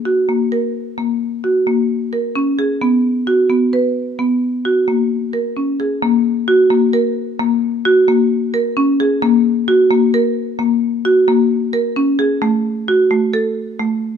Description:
contemporary instrumental, contemporary; 262 BPM (eighths); 7/8; straight; A4 = 442 Hz
marimba with medium hard mallets; solo; 0.1-14.1 s; A3 to B4; -14 LUFS; equal
moderate recital hall reverb, RT60 1.4 s; close, detailed microphones; -14 LUFS; side -7 dB against mid
0.0-6.0 A section; 6.0-14.2 B section

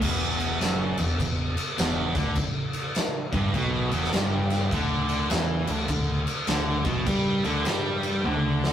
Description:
stoner and doom metal; 102 BPM; 4/4; swing 64% on 8ths; E minor; A4 = 439 Hz
overdriven electric guitar; riff; 0.0-8.7 s; E2 to G3; -31 LUFS; left 1 dB
thick fuzz guitar; riff; 0.0-8.7 s; E2 to G3; -34 LUFS; left 2 dB
thick fuzz guitar; riff; 0.0-8.7 s; E2 to G3; -29 LUFS; right 2 dB; distortion
growling fingered electric bass; bass; 0.0-8.7 s; E1 to G2; -31 LUFS; equal; overdrive
oversized low-tuned drum kit; drums; 0.0-8.7 s; crash cymbal, kick drum, snare drum, toms; -27 LUFS; equal
moderate stone room reverb, RT60 1.3 s; rough rehearsal-room recording, tube saturation; -23 LUFS; side -10 dB against mid
0.0-8.7 A section
drum fill 8.3-8.7
0.0 Em; 4.7 G6

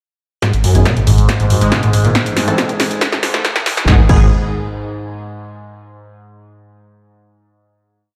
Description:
driving peak-time techno; 139 BPM; 4/4; straight; G# minor; A4 = 440 Hz
screaming distorted acid line; riff; 0.4-4.3 s; F#2 to A3; -19 LUFS; equal; distortion, ensemble chorus, sidechain pumping, tape echo
overtone-sweeping drone; drone; 0.7-3.9 s; G#2; -22 LUFS; equal; chorus, built-in reverb, sidechain pumping
electronic kick drum; drums; 0.4-4.2 s; -17 LUFS; equal; overdrive, high-pass filter on kick
techno drum kit; drums; 0.4-4.2 s; crash cymbal, hi-hat, snare drum; -20 LUFS; equal; overdrive, sidechain pumping on hats, sidechain pumping on cymbals
saturated sub bass; bass; 0.5-4.3 s; G#1 to A1; -20 LUFS; equal; sidechain pumping, low-pass filter
sync-sweep polysynth; stabs; 0.8-4.3 s; D#3 to A4; -24 LUFS; equal; chorus, vintage 12-bit sampler grit, sidechain pumping, tape echo
moderate lush hall reverb, RT60 2.1 s; played on a big sound system in a bare room, large studio reverb, high-pass filter; -14 LUFS; mono
0.4-3.9 build; 3.9-5.6 final chord
build-up 0.4-3.9; drum fill 0.4-3.9; filter sweep on acid bass 0.4-3.9; filter sweep 0.4-3.9
0.4 G#m; 2.2 Am; 3.9 G#m

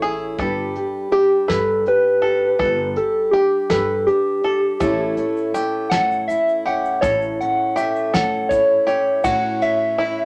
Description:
acoustic folk duo or small band; 54 BPM (dotted quarters); 6/8; straight; A mixolydian; A4 = 440 Hz
fingerpicked steel-string acoustic guitar; accompaniment; 0.0-10.2 s; A2 to C#5; -27 LUFS; equal
bluegrass banjo; arpeggios; 0.0-10.2 s; E4 to B4; -29 LUFS; equal
upright bass; bass; 0.0-10.2 s; G1 to A2; -33 LUFS; equal
soft brush drum kit; drums; 0.0-10.2 s; hi-hat, kick drum, ride cymbal, snare drum; -29 LUFS; equal
soft struck synth lead; melody; 1.1-10.2 s; G4 to F#5; -20 LUFS; equal; chorus
egg shaker; percussion; 4.8-9.7 s; -51 LUFS; equal
wet studio reverb, RT60 0.6 s; -19 LUFS; mono
0.4-9.2 A section; 9.2-10.2 B section
soft synth lead solo 0.4-9.2
0.4 G; 4.8 A

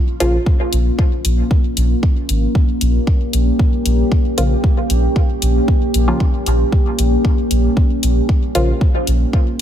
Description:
dub techno; 115 BPM; 4/4; straight; Bb dorian; A4 = 442 Hz
deep dark ambient pad; sustained chords; 0.0-9.6 s; Bb3 to G4; -20 LUFS; equal; chorus, built-in reverb, sidechain pumping
filtered dub chord stab; stabs; 0.2-0.4, 4.4-8.7 s; Db3 to F4; -22 LUFS; equal; chorus, phaser, vintage 12-bit sampler grit, sidechain pumping, dub echo
soft dub sub bass; bass; 0.2-9.2 s; Ab1 to Bb1; -16 LUFS; equal; sidechain pumping
electronic hi-hat; drums; 0.2-9.2 s; -22 LUFS; left 3 dB; studio reverb
electronic kick drum; drums; 0.5-9.4 s; -14 LUFS; equal; studio reverb
digital ambience; -13 LUFS; side -10 dB against mid
0.0-9.6 A section
0.0 Bbm

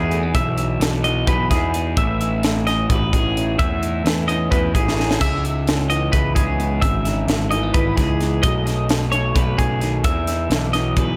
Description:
math rock and midwest emo; 260 BPM (eighths); 7/8; straight; E major; A4 = 440 Hz
electric guitar through a small old amp; accompaniment; 0.0-11.2 s; E2 to G#4; -28 LUFS; equal; analog delay
twelve-string electric guitar; arpeggios; 0.0-11.2 s; G#4 to E5; -26 LUFS; equal; analog delay
fuzz picked electric bass; bass; 0.0-11.2 s; G#1 to E2; -24 LUFS; equal; overdrive
crisp fusion drum kit; drums; 0.1-11.1 s; hi-hat, kick drum, snare drum, splash cymbal; -24 LUFS; equal; analog delay
small room ambience; echo-heavy mix; -19 LUFS; mono
0.0-11.2 A section
drum fill 4.9-5.2
0.0 Emaj7; 2.0 Amaj9#11; 5.2 C#m9; 8.4 B13; 10.0 Emaj7

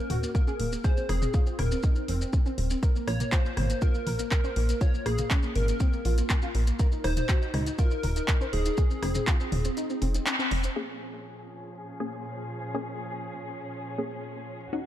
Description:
progressive house; 121 BPM; 4/4; straight; Bb minor; A4 = 441 Hz
plucky unison lead; melody; 0.0-10.3 s; Ab4 to Db5; -34 LUFS; left 1 dB; sidechain pumping, ping-pong delay
soft round pluck; arpeggios; 0.0-10.7 s; Bb3 to C5; -34 LUFS; equal; ensemble chorus, sidechain pumping, tape echo
plucky analog bass; bass; 0.1-10.7 s; Eb1 to Db2; -27 LUFS; equal; sidechain pumping
pop drum kit; drums; 0.1-14.8 s; crash cymbal, handclaps, hi-hat, rim click; -33 LUFS; equal; overdrive, low-pass filter on hats, low-pass filter on snare, low-pass filter on cymbals, low-pass filter on room
electronic toms and congas; percussion; 0.1-10.5 s; -36 LUFS; left 2 dB; sidechain pumping on toms, sidechain pumping on perc
maracas; percussion; 0.2-10.7 s; -43 LUFS; left 3 dB
electronic kick drum; drums; 0.3-9.4 s; -24 LUFS; equal
dark studio string section; sustained chords; 10.8-14.9 s; Eb2 to Ab4; -37 LUFS; equal; sidechain pumping, low-pass filter
wide unison pluck; stabs; 10.8-14.9 s; Bb3 to Ab4; -35 LUFS; left 2 dB; sidechain pumping, tape echo
light reverb; dark, warm production; -25 LUFS; side -12 dB against mid
0.0-10.8 A section; 10.8-14.9 B section
kick drops out 9.8-10.8; band accent 10.3; filter sweep on synth pluck 10.8-14.9; filter sweep on string section 10.8-14.9
0.0 Eb5; 0.8 Fm7; 2.8 Absus2 (rootless); 6.8 Eb5; 8.8 Fm7; 10.8 Bbm7

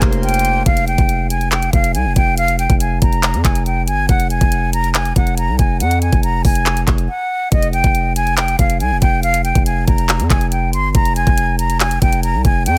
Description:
hip hop, trap; 140 BPM; 4/4; half-time; F minor; A4 = 436 Hz
Celtic harp; accompaniment; 0.0-2.9 s; Bb3 to C5; -33 LUFS; equal
accordion; sustained chords; 0.0-0.6 s; Bb2 to C5; -29 LUFS; equal
distorted 808-style bass; bass; 0.0-12.8 s; F1 to F2; -20 LUFS; equal; distortion
trap drum kit; drums; 0.0-12.8 s; handclaps, hi-hat, kick drum; -18 LUFS; equal
breathy concert flute; melody; 0.2-12.8 s; Eb5 to C6; -21 LUFS; equal; delay
small room reverb; -16 LUFS; mono
0.7-12.8 A section
break 7.1-7.5
0.0 Bbmadd9/F; 0.7 F5; 4.1 Fm; 7.5 Fmadd9; 10.9 Fm

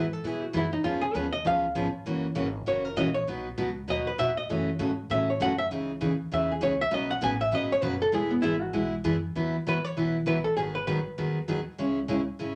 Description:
country, western swing; 197 BPM; 4/4; swing 60% on 8ths; E major; A4 = 439 Hz
archtop guitar, miked and amplified; melody; 0.0-11.4 s; B3 to G#5; -30 LUFS; equal
picked steel-string acoustic guitar; accompaniment; 0.0-12.6 s; B2 to B4; -31 LUFS; equal
upright bass; bass; 0.0-12.6 s; E1 to B2; -42 LUFS; equal
wet club reverb, RT60 0.6 s; -28 LUFS; mono
0.0-9.3 A section; 9.3-12.6 B section
hollow-body jazz guitar solo 0.0-9.3
0.0 Eadd9; 0.8 C#7; 2.1 F#7; 3.3 B; 4.5 F#m7; 5.7 C#madd9; 6.9 Badd9; 8.1 E; 9.3 Esus2; 10.6 G#m7; 11.8 C#m

